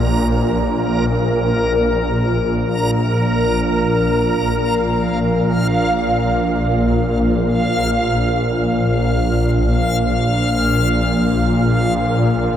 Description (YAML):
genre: dark ambient drone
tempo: free time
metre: none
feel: none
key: unclear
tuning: A4 = 440 Hz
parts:
  - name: swarming drone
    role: drone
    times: 0.0-12.6 s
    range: Bb1 to Bb2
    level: -16 LUFS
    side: equal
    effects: built-in reverb
  - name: backwards swelling texture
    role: texture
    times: 0.0-12.6 s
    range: Bb4 to F5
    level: -21 LUFS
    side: left 1 dB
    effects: built-in reverb, shimmer reverb
  - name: deep dark ambient pad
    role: sustained chords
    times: 12.4-12.6 s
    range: Bb3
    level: -32 LUFS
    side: left 2 dB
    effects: none
room: wet huge ambient reverb, RT60 8.9 s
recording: dreamy mix soaked in reverb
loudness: -15 LUFS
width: side -10 dB against mid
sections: 0.0-4.0 A section; 4.0-12.6 B section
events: none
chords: 0.0 N.C.; 4.0 Bb5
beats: free time